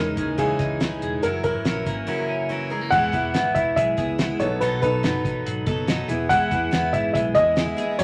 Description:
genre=jangly indie pop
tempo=142 BPM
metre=4/4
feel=straight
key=unclear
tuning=A4 = 440 Hz
part: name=dark upright piano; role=melody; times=0.0-8.0 s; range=G#4 to F#5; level=-25 LUFS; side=equal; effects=none
part: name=picked steel-string acoustic guitar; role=accompaniment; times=0.0-8.0 s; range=B2 to A#4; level=-31 LUFS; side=equal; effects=none
part: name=twelve-string electric guitar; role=arpeggios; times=0.0-8.0 s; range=F#2 to A4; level=-30 LUFS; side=equal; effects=none
part: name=vintage muted fingered electric bass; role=bass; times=0.0-8.0 s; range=E1 to G#2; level=-34 LUFS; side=equal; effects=none
part: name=cloth-damped thuddy drum kit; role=drums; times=0.2-8.0 s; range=crash cymbal, hi-hat, kick drum, snare drum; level=-30 LUFS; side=equal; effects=none
room=wet club reverb, RT60 0.8 s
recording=vinyl crackle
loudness=-23 LUFS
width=mono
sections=0.0-2.9 A section; 2.9-8.0 B section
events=none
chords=0.0 C#madd9; 1.2 F#7; 2.9 E; 4.4 B7; 6.1 E

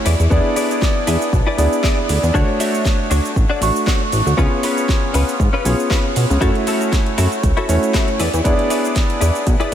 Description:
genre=nu-disco, nu disco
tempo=118 BPM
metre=4/4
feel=swing 54% on 16ths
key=unclear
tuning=A4 = 437 Hz
part: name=warm electric grand piano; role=accompaniment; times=0.0-9.7 s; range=A3 to C#6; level=-19 LUFS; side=equal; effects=sidechain pumping, diffuse ambient delay
part: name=direct-recorded clean electric guitar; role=riff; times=0.1-9.7 s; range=C#4 to E5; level=-24 LUFS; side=left 4 dB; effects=ensemble chorus, diffuse ambient delay
part: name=chorused synth bass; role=bass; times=0.1-9.6 s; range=A1 to B2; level=-16 LUFS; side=equal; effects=sidechain pumping
part: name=house drum kit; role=drums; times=0.1-9.7 s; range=cabasa, hi-hat, snare drum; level=-25 LUFS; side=right 1 dB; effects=studio reverb
part: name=electronic kick drum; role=drums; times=0.3-9.6 s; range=none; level=-18 LUFS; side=equal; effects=studio reverb
room=light reverb, digital ambience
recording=none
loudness=-14 LUFS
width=side -10 dB against mid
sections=0.0-9.7 A section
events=none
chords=0.1 E7; 2.3 Dmaj7; 4.4 C#7; 6.4 F#m7; 8.2 E7

